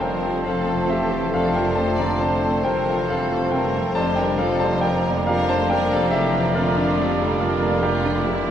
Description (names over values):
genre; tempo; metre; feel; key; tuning
classical, romantic movement for piano and orchestra; 46 BPM (dotted quarters); 12/8; rubato; unclear; A4 = 443 Hz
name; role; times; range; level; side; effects
clear baby grand piano; melody; 0.0-8.5 s; F2 to Bb5; -22 LUFS; left 1 dB; none
rich symphonic violin section; melody; 0.0-7.4 s; F4 to D5; -33 LUFS; left 5 dB; none
clear oboe; second line; 0.0-8.5 s; C5 to D5; -31 LUFS; right 2 dB; none
flute section; second line; 0.0-8.5 s; A5 to Bb5; -31 LUFS; right 1 dB; none
rich symphonic violin section; second line; 0.0-8.5 s; A3 to A4; -31 LUFS; left 2 dB; none
clear symphonic viola section; accompaniment; 0.0-8.5 s; D3 to C4; -31 LUFS; right 2 dB; none
warm bassoon; accompaniment; 0.0-8.5 s; G3 to C4; -31 LUFS; right 2 dB; none
warm French horn section; sustained chords; 0.0-7.4 s; D3 to Bb3; -30 LUFS; left 4 dB; none
clear symphonic cello section; bass; 0.0-8.5 s; F2; -29 LUFS; right 1 dB; none
warm studio double bass section; bass; 0.0-8.5 s; F1; -29 LUFS; right 5 dB; none
dark clarinet; second line; 1.3-8.5 s; A4 to D5; -31 LUFS; left 2 dB; none
room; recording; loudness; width
moderate scoring stage reverb, RT60 1.8 s; close, detailed microphones; -18 LUFS; side -9 dB against mid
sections
0.0-8.5 A section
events
none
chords
0.0 Gm7/F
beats
0.01 1.34 2.66 | 3.96 5.28 6.55 7.82